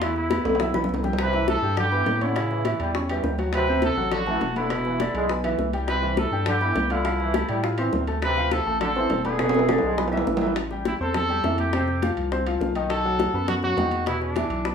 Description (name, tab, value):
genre	latin, salsa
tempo	205 BPM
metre	4/4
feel	straight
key	A minor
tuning	A4 = 440 Hz
part	clear trumpet	melody	0.0-14.7 s	D4 to B4	-27 LUFS	right 1 dB	plate reverb
part	bright grand piano	accompaniment	0.0-14.7 s	B2 to F6	-28 LUFS	left 2 dB	plate reverb
part	saturated sub bass	bass	0.0-14.7 s	E1 to A2	-28 LUFS	equal	none
part	bongos	percussion	0.0-14.7 s	none	-30 LUFS	left 7 dB	none
part	claves	percussion	0.0-10.3 s	none	-41 LUFS	left 4 dB	none
part	congas	percussion	0.0-14.7 s	none	-34 LUFS	equal	none
part	timbales	percussion	0.0-14.6 s	none	-30 LUFS	right 3 dB	none
part	clear trombone section	second line	1.2-10.4 s	C3 to G#3	-29 LUFS	equal	plate reverb
room	wet studio reverb, RT60 0.6 s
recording	rough home demo mix, small room ambience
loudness	-21 LUFS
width	side -7 dB against mid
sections	0.0-1.2 A section; 1.2-10.6 B section; 10.6-14.7 A section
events	drum fill 0.5-1.2, 9.4-10.6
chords	0.0 E5; 1.2 Cmaj7; 2.4 A7; 3.5 D13; 4.7 E7(no3); 5.9 Cmaj7; 7.0 Fmaj7/C; 8.2 Dm7; 9.4 E7; 10.6 Am7; 11.7 Fsus2; 12.9 B7; 14.1 E5